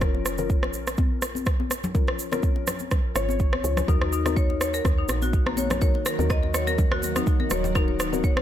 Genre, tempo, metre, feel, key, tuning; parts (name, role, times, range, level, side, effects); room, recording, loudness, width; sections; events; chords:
afro house; 124 BPM; 4/4; swing 55% on 16ths; Eb minor; A4 = 438 Hz
felt-muted upright piano; stabs; 0.0-8.4 s; F3 to Db5; -31 LUFS; left 6 dB; sidechain pumping, ping-pong delay
woody FM bass; bass; 0.0-8.4 s; Eb1 to Eb2; -30 LUFS; right 1 dB; sidechain pumping
electronic kick drum; drums; 0.0-8.3 s; -23 LUFS; right 1 dB
electronic rim click; drums; 0.0-8.4 s; -30 LUFS; right 1 dB
cabasa; percussion; 0.0-8.3 s; -34 LUFS; right 6 dB
congas; percussion; 0.0-8.4 s; -32 LUFS; left 5 dB
ethereal airy pad; sustained chords; 4.7-8.4 s; Eb3 to Gb4; -34 LUFS; equal; ensemble chorus, built-in reverb, phaser, sidechain pumping
marimba with medium hard mallets; arpeggios; 3.9-8.4 s; Bb3 to Eb5; -29 LUFS; left 1 dB; sidechain pumping, ping-pong delay
small room ambience; -22 LUFS; side -11 dB against mid
0.0-8.4 A section
0.0 Bbm; 3.9 Ebm